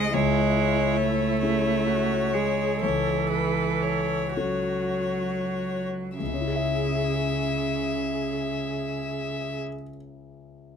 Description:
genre	classical, slow romantic movement for piano quartet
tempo	31-49 BPM (dotted quarters)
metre	6/8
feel	rubato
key	C# minor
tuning	A4 = 440 Hz
part	clear violin	melody	0.0-9.6 s	B4 to E5	-29 LUFS	left 7 dB	none
part	clear cello	second line	0.0-9.6 s	C#3 to A3	-27 LUFS	right 6 dB	none
part	dark concert grand piano	accompaniment	0.0-10.8 s	C#2 to E5	-30 LUFS	left 5 dB	none
part	warm viola	accompaniment	0.0-9.6 s	E4 to A4	-33 LUFS	right 3 dB	none
room	light reverb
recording	close, detailed microphones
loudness	-23 LUFS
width	side -7 dB against mid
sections	0.0-6.2 A section; 6.2-9.8 B section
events	slowing down 0.0-6.2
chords	0.1 C#m; 2.8 F#m/C#; 6.2 C#m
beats	| 0.13 1.41 | 2.82 4.36 | 6.20 8.01

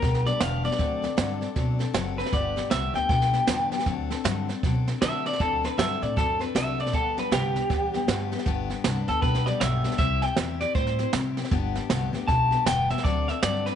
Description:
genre	rockabilly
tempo	157 BPM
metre	4/4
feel	swing 62% on 8ths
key	G major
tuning	A4 = 441 Hz
part	electric guitar through a small old amp	melody	0.0-13.8 s	G4 to A5	-27 LUFS	left 1 dB	tape echo
part	picked steel-string acoustic guitar	accompaniment	0.0-13.8 s	G2 to A4	-32 LUFS	left 12 dB	none
part	upright bass	bass	0.0-13.7 s	E1 to D3	-29 LUFS	equal	none
part	jazz brush drum kit	drums	0.0-13.7 s	hi-hat, kick drum, snare drum	-28 LUFS	right 3 dB	none
room	moderate spring reverb, RT60 1.2 s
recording	1960s-style stereo, nothing above 10.9 kHz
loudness	-23 LUFS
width	side -9 dB against mid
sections	0.0-8.5 A section; 8.5-13.8 B section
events	clean electric guitar solo 8.5-13.8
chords	0.0 G; 0.8 D7; 2.3 G; 3.9 D7; 6.9 G; 10.0 C; 11.5 G; 13.0 D7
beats	0.03 0.41 | 0.80 1.18 1.56 1.95 | 2.33 2.71 3.10 3.48 | 3.87 4.25 4.63 5.02 | 5.40 5.78 6.17 6.55 | 6.93 7.31 7.70 8.08 | 8.46 8.84 9.23 9.61 | 9.99 10.37 10.75 11.14 | 11.52 11.90 12.28 12.66 | 13.05 13.43

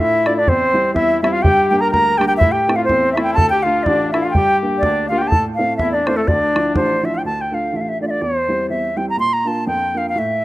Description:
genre	celtic folk, Celtic polka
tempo	124 BPM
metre	2/4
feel	swing 57% on 8ths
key	D minor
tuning	A4 = 440 Hz
part	bright wooden flute	melody	0.0-10.4 s	A4 to C6	-17 LUFS	equal	none
part	clear flugelhorn	second line	0.0-7.0 s	A3 to Bb4	-21 LUFS	left 3 dB	none
part	warm upright piano	accompaniment	0.0-10.4 s	A1 to G4	-22 LUFS	right 1 dB	none
part	bodhran	percussion	0.3-6.9 s	none	-18 LUFS	equal	none
room	light reverb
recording	rough home demo mix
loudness	-14 LUFS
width	side -17 dB against mid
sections	0.0-7.3 A section; 7.3-10.4 A section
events	none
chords	0.5 C/E; 1.4 Gm; 2.4 Am; 3.4 Dm; 4.3 Gm; 5.3 Am; 6.3 Dmadd9; 7.3 Dm; 8.2 C/E; 9.2 Bb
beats	| 0.47 0.96 | 1.45 1.93 | 2.41 2.90 | 3.38 3.87 | 4.35 4.83 | 5.32 5.80 | 6.28 6.77 | 7.25 7.74 | 8.22 8.71 | 9.19 9.68 | 10.16

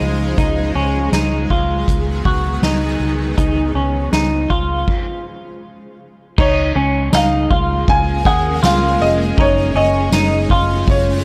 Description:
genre	dream pop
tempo	80 BPM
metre	4/4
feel	straight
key	Db major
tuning	A4 = 440 Hz
part	shimmering ambient pad	sustained chords	0.0-11.2 s	Db3 to C5	-26 LUFS	equal	chorus, built-in reverb, plate reverb
part	semi-hollow electric guitar	arpeggios	0.0-11.2 s	Db4 to Ab4	-22 LUFS	equal	lush chorus, tape echo, plate reverb
part	vintage muted fingered electric bass	bass	0.0-11.2 s	F1 to Eb2	-22 LUFS	equal	tube saturation
part	soft-mallet drum kit	drums	0.4-11.1 s	crash cymbal, hi-hat, kick drum, ride cymbal, snare drum, tambourine	-22 LUFS	equal	none
part	felt-muted upright piano	melody	6.4-11.2 s	Db5 to Ab5	-21 LUFS	equal	tape echo, plate reverb
room	light reverb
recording	dry, gritty hardware recording, transformer saturation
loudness	-16 LUFS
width	mono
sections	0.0-6.4 A section; 6.4-11.2 B section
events	stop 4.9-6.4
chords	0.4 Abm7/Db; 3.4 Dbmaj7; 6.4 Db6; 9.4 Gbmadd9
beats	| 0.38 1.13 1.88 2.63 | 3.38 4.13 4.88 5.63 | 6.38 7.13 7.88 8.63 | 9.38 10.13 10.88

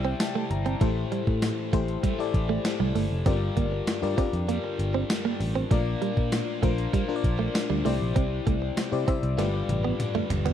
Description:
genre	1980s-style pop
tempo	98 BPM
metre	4/4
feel	straight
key	C mixolydian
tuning	A4 = 441 Hz
part	FM electric piano	accompaniment	0.0-10.5 s	G2 to Bb5	-30 LUFS	left 7 dB	chorus
part	cranked stack guitar	accompaniment	0.0-10.5 s	G2 to C4	-36 LUFS	right 3 dB	overdrive, lush chorus
part	direct-recorded clean electric guitar	riff	0.0-10.5 s	G3 to C4	-30 LUFS	right 9 dB	analog chorus
part	vintage muted picked electric bass	bass	0.0-10.5 s	F1 to C3	-28 LUFS	equal	none
part	gated 80s digital drum machine	drums	0.2-10.5 s	hi-hat, kick drum, snare drum, tambourine, toms	-28 LUFS	equal	gated reverb, gated reverb snare, overdrive
room	digital ambience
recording	dry, close 1970s-style studio recording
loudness	-24 LUFS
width	side -10 dB against mid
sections	0.0-10.5 A section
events	FM electric piano fill 0.0-0.8; drum fill 9.4-10.5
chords	0.0 Cadd9; 0.8 Am7; 3.3 Gm7; 5.7 Bb; 7.9 Cadd9; 9.4 G7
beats	0.20 | 0.81 1.43 2.04 2.65 | 3.26 3.87 4.49 5.10 | 5.71 6.32 6.93 7.55 | 8.16 8.77 9.38 10.00

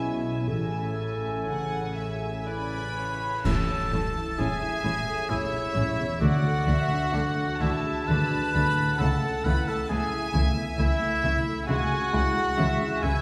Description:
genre	cinematic, emotional film score for orchestra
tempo	58-68 BPM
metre	3/4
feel	rubato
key	A major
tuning	A4 = 440 Hz
part	dark studio violin section	melody	0.0-13.2 s	C#5 to A5	-37 LUFS	equal	none
part	dark clarinet	second line	0.0-3.0 s	E4 to A4	-36 LUFS	equal	none
part	rich symphonic violin section	second line	0.0-13.2 s	C#5 to B5	-36 LUFS	equal	none
part	dark studio viola section	accompaniment	0.0-13.1 s	C#3 to E4	-39 LUFS	equal	none
part	felt-muted upright piano	accompaniment	0.0-13.2 s	A1 to C#5	-33 LUFS	equal	none
part	dark studio double bass section	bass	0.0-13.1 s	A1 to D2	-33 LUFS	equal	none
part	warm studio cello section	bass	0.0-13.1 s	A2 to D3	-35 LUFS	equal	none
part	cymbal swell, clash cymbals and concert bass drum	percussion	0.5-5.3 s	none	-36 LUFS	equal	none
part	warm oboe	second line	2.5-13.2 s	E4 to B4	-32 LUFS	equal	none
room	wet scoring stage reverb, RT60 1.5 s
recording	heard from further back in the room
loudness	-26 LUFS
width	mono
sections	0.0-3.5 A section; 3.5-13.2 A section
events	band accent 3.5-4.4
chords	0.5 Amaj7; 6.2 D; 9.0 Amaj7/C#; 11.7 C#m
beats	| 0.48 1.48 2.47 | 3.46 4.40 5.31 | 6.22 7.14 8.09 | 9.00 9.90 10.79 | 11.69 12.58

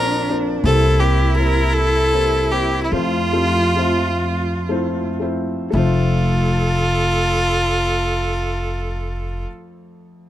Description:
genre	acoustic folk-pop ballad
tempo	36-55 BPM (dotted quarters)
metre	6/8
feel	straight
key	F major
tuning	A4 = 441 Hz
part	clear violin	melody	0.0-9.4 s	E4 to Bb4	-20 LUFS	equal	none
part	clear cello	second line	0.0-9.4 s	D4 to A4	-25 LUFS	right 3 dB	none
part	felt-muted upright piano	accompaniment	0.0-10.3 s	F1 to E5	-23 LUFS	left 2 dB	none
part	upright bass	bass	0.0-9.4 s	F1 to F2	-20 LUFS	equal	none
room	little or no reverb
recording	close, detailed microphones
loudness	-16 LUFS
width	side -12 dB against mid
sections	0.0-5.7 A section; 5.7-10.3 B section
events	slowing down 0.6-5.7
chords	0.0 Bbadd9; 0.6 C7; 2.9 Fmaj7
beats	| 0.64 1.75 | 2.92 4.22 | 5.73 7.38 | 9.02

